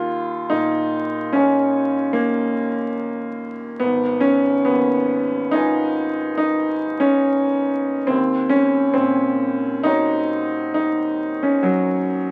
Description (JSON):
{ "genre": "classical, impressionist solo piano", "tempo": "70 BPM", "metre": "5/4", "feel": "rubato", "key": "Eb minor from 3.8 s", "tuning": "A4 = 440 Hz", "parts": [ { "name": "warm concert grand piano", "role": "solo", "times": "0.0-12.3 s", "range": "Ab1 to Bb5", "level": "-20 LUFS", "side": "equal", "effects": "none" } ], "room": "moderate studio ambience, RT60 0.5 s", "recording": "very old 78 rpm record, vinyl crackle", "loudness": "-20 LUFS", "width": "mono", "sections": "0.0-12.3 A section", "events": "none", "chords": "0.0 D#7sus4; 3.8 Abm6; 8.1 Ebm7", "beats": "0.49 1.33 2.16 2.99 | 3.82 4.68 5.55 6.41 7.26 | 8.11 8.97 9.85 10.76 11.64" }